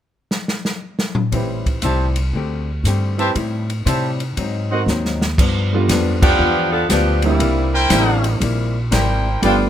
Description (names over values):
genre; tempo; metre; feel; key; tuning
jazz, big band swing; 118 BPM; 4/4; swing 67% on 8ths; G mixolydian; A4 = 440 Hz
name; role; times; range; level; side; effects
open jazz drum kit; drums; 0.3-9.6 s; crash cymbal, hi-hat, kick drum, ride cymbal, snare drum, toms; -22 LUFS; equal; none
archtop guitar, miked and amplified; accompaniment; 1.3-9.7 s; G2 to G4; -25 LUFS; left 6 dB; none
clear baby grand piano; accompaniment; 1.3-9.7 s; G3 to B4; -22 LUFS; right 4 dB; none
upright bass; bass; 1.3-9.7 s; G1 to C3; -20 LUFS; equal; none
clear trumpet section; stabs; 1.8-9.7 s; E4 to A5; -21 LUFS; right 1 dB; none
clear saxophone section; melody; 6.2-9.6 s; F3 to A4; -18 LUFS; equal; none
room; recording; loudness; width
light reverb; close, detailed microphones; -16 LUFS; side -10 dB against mid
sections
0.0-1.3 A section; 1.3-5.4 B section; 5.4-9.7 C section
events
drum fill 0.3-1.3, 4.9-5.4; band accent 6.1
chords
0.0 N.C.; 1.3 Am7; 2.3 D7sus4; 3.4 Am7; 4.4 Ab7; 5.4 G7; 7.4 C7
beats
0.31 0.81 | 1.32 1.83 2.34 2.84 | 3.35 3.86 4.36 4.87 | 5.38 5.88 6.39 6.89 | 7.40 7.91 8.41 8.92 | 9.42